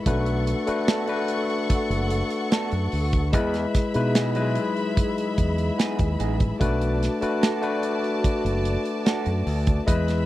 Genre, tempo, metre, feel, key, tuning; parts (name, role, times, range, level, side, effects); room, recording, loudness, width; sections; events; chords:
lush 1970s-style soul; 73 BPM; 4/4; straight; A4 = 440 Hz
warm studio string section; second line; 0.0-10.3 s; F#4 to C#6; -31 LUFS; right 1 dB
barky tine electric piano; accompaniment; 0.0-10.3 s; F#3 to D#5; -25 LUFS; left 3 dB; overdrive
fingered electric bass; bass; 0.1-10.3 s; F#1 to B2; -25 LUFS; equal
modern studio drum kit; drums; 0.1-10.3 s; hi-hat, kick drum, snare drum; -23 LUFS; right 1 dB
electric guitar through a small old amp; riff; 0.9-9.3 s; B3 to A4; -34 LUFS; right 5 dB; spring reverb
small room ambience; dry, close 1970s-style studio recording; -21 LUFS; side -15 dB against mid
0.0-10.3 A section
0.1 Bm7; 3.3 Emaj7; 6.6 Bm7